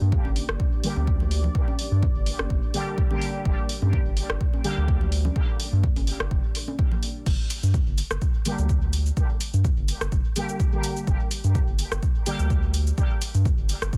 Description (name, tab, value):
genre	dub techno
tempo	126 BPM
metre	4/4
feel	swing 54% on 16ths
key	G minor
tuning	A4 = 438 Hz
part	dark analog pad	sustained chords	0.0-7.3 s	Bb3 to D5	-40 LUFS	equal	chorus, sidechain pumping
part	round analog bass	bass	0.0-14.0 s	G1 to G2	-26 LUFS	equal	tube saturation, sidechain pumping
part	electronic kick drum	drums	0.1-14.0 s	none	-26 LUFS	equal	none
part	congas	percussion	0.2-7.0 s	none	-40 LUFS	equal	overdrive, sidechain pumping on perc, dub echo
part	punchy analog drum machine	drums	0.4-14.0 s	crash cymbal, hi-hat, rim click, shaker	-34 LUFS	equal	none
part	resonant sweep polysynth	stabs	0.8-4.7, 8.5-12.4 s	D3 to G4	-35 LUFS	equal	chorus, phaser, sidechain pumping, dub echo
room	digital ambience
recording	dense, heavily limited modern master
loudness	-24 LUFS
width	mono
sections	0.0-7.3 A section; 7.3-14.0 A section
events	filter sweep on analog polysynth 0.0-7.3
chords	0.0 Gm; 7.3 G5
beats	0.12 0.60 1.07 | 1.55 2.03 2.50 2.98 | 3.46 3.93 4.41 4.88 | 5.36 5.84 6.31 6.79 | 7.26 7.74 8.22 8.69 | 9.17 9.64 10.12 10.60 | 11.07 11.55 12.03 12.50 | 12.98 13.46 13.93